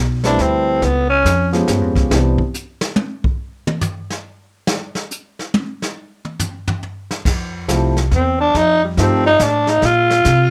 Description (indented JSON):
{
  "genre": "jazz, small-group swing and bop",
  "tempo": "140 BPM",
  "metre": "3/4",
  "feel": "swing 65% on 8ths",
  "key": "C major, F major from 7.3 s",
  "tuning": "A4 = 440 Hz",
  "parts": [
    { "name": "upright bass", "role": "bass", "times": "0.0-2.4, 7.3-10.5 s", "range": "B1 to C3", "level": "-21 LUFS", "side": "equal", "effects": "none" },
    { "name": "dark grand piano", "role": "accompaniment", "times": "0.2-2.4, 7.7-9.2 s", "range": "E3 to B4", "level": "-21 LUFS", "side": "equal", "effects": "none" },
    { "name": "jazz brush drum kit", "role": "drums", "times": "0.2-10.5 s", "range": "brushed snare drum, crash cymbal, hi-hat, kick drum, snare drum, toms", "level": "-23 LUFS", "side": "equal", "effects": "none" },
    { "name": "growling tenor saxophone", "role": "melody", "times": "0.3-1.5, 8.2-10.5 s", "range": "G3 to F4", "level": "-17 LUFS", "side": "equal", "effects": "none" }
  ],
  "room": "light reverb",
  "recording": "none",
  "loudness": "-17 LUFS",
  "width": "mono",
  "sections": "0.0-7.3 A section; 7.3-10.5 A section",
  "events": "tenor saxophone solo 0.0-10.5; drum solo 2.1-7.3",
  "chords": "0.0 Am9; 0.8 Db7#11; 2.1 Cmaj9; 3.4 N.C.; 7.3 Fmaj9; 8.5 F9; 9.8 Bb5"
}